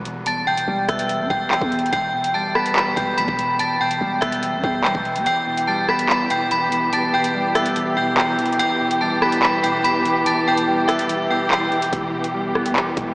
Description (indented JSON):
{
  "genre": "hip hop, drill",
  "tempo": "144 BPM",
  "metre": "4/4",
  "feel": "half-time",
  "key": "E minor",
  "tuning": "A4 = 440 Hz",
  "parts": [
    { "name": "mellow electric guitar", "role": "accompaniment", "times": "0.0-13.1 s", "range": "E2 to B3", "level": "-30 LUFS", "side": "equal", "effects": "subtle chorus, low-pass filter" },
    { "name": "growling 808-style bass", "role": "bass", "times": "0.0-5.3, 11.9-13.1 s", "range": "D1 to G2", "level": "-33 LUFS", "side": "equal", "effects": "none" },
    { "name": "drill drum kit", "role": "drums", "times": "0.1-13.1 s", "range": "handclaps, hi-hat, kick drum, rim click", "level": "-28 LUFS", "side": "equal", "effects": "none" },
    { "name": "metallic FM bell", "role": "melody", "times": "0.3-11.9 s", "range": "E5 to B6", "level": "-22 LUFS", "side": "equal", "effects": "chorus, low-pass filter, tape echo" },
    { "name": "muted chamber string section", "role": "sustained chords", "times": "5.3-13.1 s", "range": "E3 to G4", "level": "-26 LUFS", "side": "equal", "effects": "none" }
  ],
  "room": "wet huge ambient reverb, RT60 7.3 s",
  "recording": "dreamy mix soaked in reverb, small speaker sound",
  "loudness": "-20 LUFS",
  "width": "mono",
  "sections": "0.0-13.1 A section",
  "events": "break 0.0, 11.9-13.1; kick muted 5.3-11.9",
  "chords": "0.0 Em",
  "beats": "| 0.26 0.68 1.09 1.51 | 1.93 2.34 2.76 3.18 | 3.59 4.01 4.43 4.84 | 5.26 5.68 6.09 6.51 | 6.93 7.34 7.76 8.18 | 8.59 9.01 9.43 9.84 | 10.26 10.68 11.09 11.51 | 11.93 12.34 12.76"
}